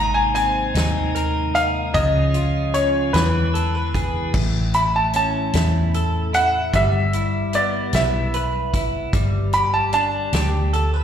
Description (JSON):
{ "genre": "six-eight pop ballad", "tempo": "50 BPM (dotted quarters)", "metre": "6/8", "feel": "straight", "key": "unclear", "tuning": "A4 = 440 Hz", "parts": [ { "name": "clear grand piano", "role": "melody", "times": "0.0-11.0 s", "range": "B4 to B5", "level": "-21 LUFS", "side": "equal", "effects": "plate reverb, slapback echo" }, { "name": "direct-recorded clean electric guitar", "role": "accompaniment", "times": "0.0-11.0 s", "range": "Ab2 to B4", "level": "-25 LUFS", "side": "equal", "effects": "double-tracked left and right, plate reverb, slapback echo" }, { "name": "tonewheel organ", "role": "sustained chords", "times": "0.0-4.3 s", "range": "C3 to F4", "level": "-30 LUFS", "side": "right 1 dB", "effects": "slow rotary speaker" }, { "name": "vintage muted fingered electric bass", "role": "bass", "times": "0.0-11.0 s", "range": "G1 to E2", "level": "-22 LUFS", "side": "equal", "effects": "none" }, { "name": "natural country drum kit", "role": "drums", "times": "0.4-10.9 s", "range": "crash cymbal, hi-hat, kick drum, snare drum", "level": "-26 LUFS", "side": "equal", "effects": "none" } ], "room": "light reverb", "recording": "live gig heard through the venue's PA, recital hall reverb", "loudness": "-17 LUFS", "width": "side -9 dB against mid", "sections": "0.0-4.3 A section; 4.3-11.0 A section", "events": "none", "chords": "0.0 Abadd9; 1.9 Db; 3.1 E7; 4.3 A; 6.7 Em/G; 9.1 G", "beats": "0.75 | 1.95 3.14 | 4.34 5.54 | 6.74 7.94 | 9.14 10.34" }